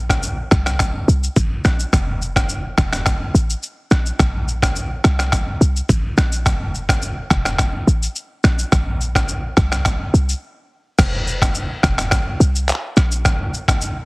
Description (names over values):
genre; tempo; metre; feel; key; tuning
afrobeats; 106 BPM; 4/4; straight; F major; A4 = 440 Hz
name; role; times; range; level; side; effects
short 808-style bass; bass; 0.0-13.4 s; E1 to C2; -17 LUFS; equal; none
trip hop sampler-style drum kit; drums; 0.1-14.0 s; crash cymbal, finger snaps, handclaps, kick drum, rim click, shaker; -18 LUFS; equal; none
room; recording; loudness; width
little or no reverb; heavily compressed radio sound; -16 LUFS; side -27 dB against mid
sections
0.0-11.0 A section; 11.0-14.1 B section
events
break 10.4-11.0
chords
none